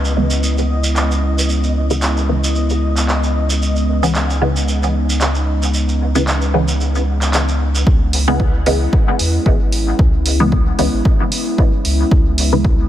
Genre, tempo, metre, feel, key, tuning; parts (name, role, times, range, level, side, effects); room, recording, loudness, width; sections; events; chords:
dub techno; 113 BPM; 4/4; swing 55% on 16ths; C# minor; A4 = 440 Hz
warbly tape-like pad; sustained chords; 0.0-12.9 s; G#3 to E4; -22 LUFS; equal; chorus, built-in reverb, vintage 12-bit sampler grit, sidechain pumping
filtered dub chord stab; stabs; 0.0-12.9 s; C#3 to B3; -20 LUFS; equal; phaser, sidechain pumping, dub echo
soft dub sub bass; bass; 0.0-12.9 s; G#1 to E2; -17 LUFS; equal; sidechain pumping
shekere; percussion; 0.0-7.8 s; -25 LUFS; right 3 dB
bubbling stepped-filter texture; texture; 0.0-7.9 s; B3 to D#5; -28 LUFS; left 2 dB; chorus, built-in reverb, sidechain pumping
punchy analog drum machine; drums; 1.0-12.5 s; handclaps, hi-hat; -23 LUFS; right 1 dB; low-pass filter on snare, low-pass filter on hats, low-pass filter on room
electronic kick drum; drums; 7.9-12.8 s; -14 LUFS; equal
light reverb, digital ambience; -13 LUFS; side -12 dB against mid
0.0-7.9 A section; 7.9-12.9 B section
filter sweep on synth stab 0.0-7.9, 7.9-12.9; filter sweep on ambient pad 0.0-7.9
0.0 C#m7